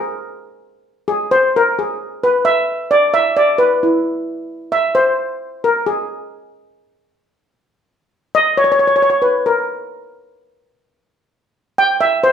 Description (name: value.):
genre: calypso.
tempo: 132 BPM.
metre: 4/4.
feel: swing 53% on 16ths.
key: unclear.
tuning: A4 = 441 Hz.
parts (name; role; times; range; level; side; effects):
steel pan; solo; 0.0-12.3 s; E4 to G5; -14 LUFS; equal; none.
room: wet large studio reverb, RT60 0.9 s.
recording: band playing live in one room.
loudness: -13 LUFS.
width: side -8 dB against mid.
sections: 0.0-12.3 A section.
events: steel pan solo 0.0-12.3.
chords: none.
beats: | 0.41 0.86 1.32 1.77 | 2.22 2.68 3.13 3.59 | 4.04 4.49 4.95 5.40 | 5.86 6.31 6.76 7.22 | 7.67 8.13 8.58 9.03 | 9.49 9.94 10.40 10.85 | 11.30 11.76 12.21.